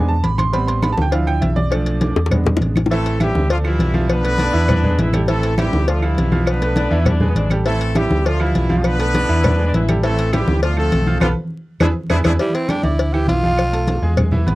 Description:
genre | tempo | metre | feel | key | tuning
latin, salsa | 202 BPM | 4/4 | straight | A minor | A4 = 440 Hz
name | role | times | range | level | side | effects
bright grand piano | accompaniment | 0.0-14.6 s | E3 to D6 | -22 LUFS | right 2 dB | none
hollow-body short-scale fingered electric bass | bass | 0.0-14.6 s | A1 to E2 | -19 LUFS | equal | none
congas | percussion | 0.1-14.6 s | none | -21 LUFS | equal | none
cowbell and bongos | percussion | 0.2-14.6 s | none | -24 LUFS | left 4 dB | none
claves | percussion | 0.4-14.3 s | none | -32 LUFS | right 7 dB | none
brilliant horn section | melody | 2.9-12.3 s | E3 to B4 | -22 LUFS | equal | none
bright saxophone section | second line | 4.4-12.3 s | B3 to F4 | -25 LUFS | left 2 dB | none
raspy tenor saxophone | melody | 12.4-14.1 s | G3 to G4 | -21 LUFS | equal | none
room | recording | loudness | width
little or no reverb | dry, close 1970s-style studio recording, vinyl crackle | -15 LUFS | side -18 dB against mid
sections
0.0-2.9 A section; 2.9-12.4 B section; 12.4-14.6 A section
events
grand piano solo 0.0-2.9; drum fill 2.2-2.9; band accent 11.2-12.4; tenor saxophone solo 12.4-14.6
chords
0.0 E7; 0.5 Am7; 1.1 Dmadd9; 1.7 Bm7b5; 2.3 E7; 2.9 Am7; 3.5 Dmadd9; 4.1 Bm7b5; 4.7 E7; 5.3 Am7; 5.9 Dmadd9; 6.5 Bm7b5; 7.1 E7; 7.7 Am7; 8.2 Dmadd9; 8.8 Bm7b5; 9.4 E7; 10.0 Am7; 10.6 Dm; 11.2 B7(b5, no3); 11.8 E7; 12.4 D9sus4; 13.0 Dmadd9; 13.6 Fmaj7#11/B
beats
0.23 | 0.53 0.83 1.13 1.42 | 1.72 2.02 2.31 2.61 | 2.91 3.21 3.50 3.80 | 4.10 4.39 4.69 4.99 | 5.28 5.58 5.88 6.17 | 6.47 6.77 7.06 7.36 | 7.66 7.95 8.25 8.54 | 8.84 9.14 9.43 9.73 | 10.03 10.32 10.62 10.92 | 11.21 11.51 11.80 12.10 | 12.40 12.69 12.99 13.29 | 13.58 13.88 14.18 14.47

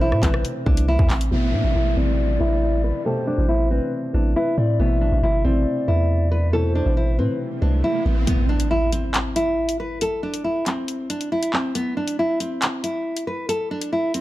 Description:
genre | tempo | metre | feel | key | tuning
hip hop, drill | 138 BPM | 4/4 | half-time | A minor | A4 = 442 Hz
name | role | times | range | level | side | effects
nylon-string guitar | melody | 0.0-14.2 s | B3 to B4 | -23 LUFS | equal | low-pass filter
hollow clarinet-like synth lead | second line | 0.0-7.4 s | B4 to E5 | -29 LUFS | left 2 dB | chorus, digital delay
dark concert grand piano | accompaniment | 0.0-8.3 s | B2 to G4 | -28 LUFS | left 1 dB | low-pass filter
long sustained 808-style bass | bass | 0.0-8.3 s | G1 to A2 | -20 LUFS | equal | none
drill drum kit | drums | 0.1-1.3, 8.3-14.2 s | handclaps, hi-hat, kick drum, rim click | -23 LUFS | equal | none
downlifter, riser and impact | sound effects | 1.3-10.0 s | none | -27 LUFS | right 1 dB | none
room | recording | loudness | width
light reverb | dark, warm production | -19 LUFS | side -16 dB against mid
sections
0.0-1.3 A section; 1.3-8.3 B section; 8.3-14.2 C section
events
filter sweep 1.3-8.3; riser 7.3-8.3; break 8.3-14.2; impact 8.3-10.0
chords
0.0 Amadd9; 8.3 N.C.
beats
0.01 0.45 0.88 | 1.32 1.75 2.19 2.62 | 3.06 3.49 3.92 4.36 | 4.79 5.23 5.66 6.10 | 6.53 6.97 7.40 7.84 | 8.27 8.71 9.14 9.58 | 10.01 10.45 10.88 11.32 | 11.75 12.19 12.62 13.06 | 13.49 13.93

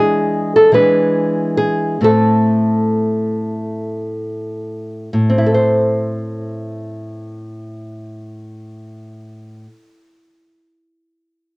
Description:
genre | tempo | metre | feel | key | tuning
classical, baroque-style dance for nylon-string guitar | 35-53 BPM (dotted quarters) | 6/8 | rubato | A minor | A4 = 440 Hz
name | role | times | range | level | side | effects
nylon-string guitar | solo | 0.0-10.1 s | A2 to C5 | -14 LUFS | equal | cassette tape
room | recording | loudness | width
moderate booth ambience, RT60 0.3 s | home recording on cassette | -13 LUFS | side -26 dB against mid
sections
0.0-5.1 A section; 5.1-11.6 B section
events
slowing down 0.0-5.1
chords
0.0 E7; 2.0 Am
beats
0.76 | 2.04 3.50 | 5.15 6.78 | 8.44 10.07

